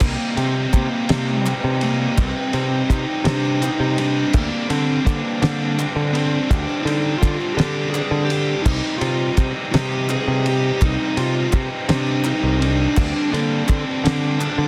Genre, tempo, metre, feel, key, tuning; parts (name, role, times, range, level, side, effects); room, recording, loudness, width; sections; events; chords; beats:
indie rock; 56 BPM (dotted quarters); 6/8; straight; C minor; A4 = 440 Hz
bluesy overdriven lead guitar; melody; 0.0-14.7 s; Bb3 to Ab4; -26 LUFS; equal; distortion, slapback echo
biting overdriven guitar; riff; 0.0-14.7 s; G3 to G4; -30 LUFS; equal; analog chorus, slapback echo
overdriven electric guitar; riff; 0.0-14.7 s; C3 to Eb4; -30 LUFS; equal
picked electric bass; bass; 0.0-14.7 s; C2 to D3; -24 LUFS; equal
cloth-damped thuddy drum kit; drums; 0.0-14.6 s; crash cymbal, kick drum, ride cymbal, snare drum; -26 LUFS; equal
group handclap; percussion; 0.0-14.6 s; -37 LUFS; equal
small room ambience; dense, heavily limited modern master; -20 LUFS; mono
0.0-14.7 A section
0.0 Cm7; 4.3 Gsus4/D; 8.7 Cm; 13.0 Gsus4/D
| 0.02 1.10 | 2.18 3.26 | 4.34 5.42 | 6.50 7.58 | 8.66 9.74 | 10.82 11.89 | 12.97 14.05